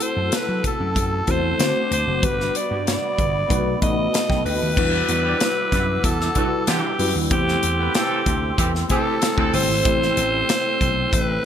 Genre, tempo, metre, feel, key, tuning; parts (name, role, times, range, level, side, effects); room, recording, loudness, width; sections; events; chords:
polished 1980s jazz-funk pop; 94 BPM; 4/4; straight; E minor; A4 = 440 Hz
raspy alto saxophone; melody; 0.0-11.4 s; G4 to D#5; -23 LUFS; equal
tine electric piano; accompaniment; 0.0-11.4 s; F#3 to A5; -26 LUFS; left 1 dB; medium stereo tremolo, ensemble chorus
breathy mellow large flute ensemble; sustained chords; 0.0-11.4 s; E4 to E6; -31 LUFS; equal
modern studio drum kit; drums; 0.0-11.3 s; crash cymbal, hi-hat, kick drum, snare drum; -24 LUFS; equal
vintage slap bass; bass; 0.2-11.4 s; F#1 to F#3; -25 LUFS; equal
warm horn section; second line; 5.1-9.6 s; D3 to D5; -29 LUFS; right 2 dB
light reverb, studio ambience; bright 1980s-style digital production; -18 LUFS; side -9 dB against mid
0.0-4.8 A section; 4.8-11.4 B section
tine electric piano fill 3.8-4.8
0.0 F#m7b5; 1.6 D7; 2.2 Gmaj7; 3.5 B7; 4.8 Em9; 7.3 C6; 9.9 Am7